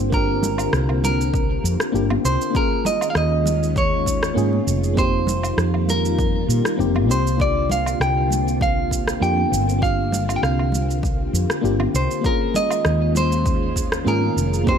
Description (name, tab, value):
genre	sunset chillout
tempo	99 BPM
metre	4/4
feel	swing 53% on 16ths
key	C minor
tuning	A4 = 440 Hz
part	clean electric guitar	melody	0.0-14.8 s	Bb4 to G5	-24 LUFS	right 2 dB	digital delay
part	mellow FM electric piano	accompaniment	0.0-14.8 s	Bb3 to Ab4	-26 LUFS	moving between left 8 dB and right 4 dB	chorus, tremolo, auto-pan, digital delay
part	soft string machine	sustained chords	0.0-14.8 s	D3 to F4	-27 LUFS	left 1 dB	ensemble chorus
part	woody fretless electric bass	bass	0.0-14.8 s	F1 to Bb2	-22 LUFS	equal	wide subtle chorus
part	electronic kick drum	drums	0.1-14.8 s	none	-23 LUFS	equal	overdrive, small room ambience
part	electronic shaker, woodblock and rim click	drums	0.1-14.8 s	none	-27 LUFS	right 1 dB	overdrive, small room ambience
part	congas	percussion	0.4-14.3 s	none	-29 LUFS	right 2 dB	none
room	light reverb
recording	none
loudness	-18 LUFS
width	side -7 dB against mid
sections	0.0-14.8 A section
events	none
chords	0.0 C9sus4; 2.5 Eb9sus4; 5.0 F9sus4; 7.4 C9sus4; 12.2 Eb9sus4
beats	| 0.12 0.73 1.34 1.94 | 2.55 3.15 3.76 4.37 | 4.97 5.58 6.18 6.79 | 7.40 8.00 8.61 9.21 | 9.82 10.43 11.03 11.64 | 12.24 12.85 13.46 14.06 | 14.67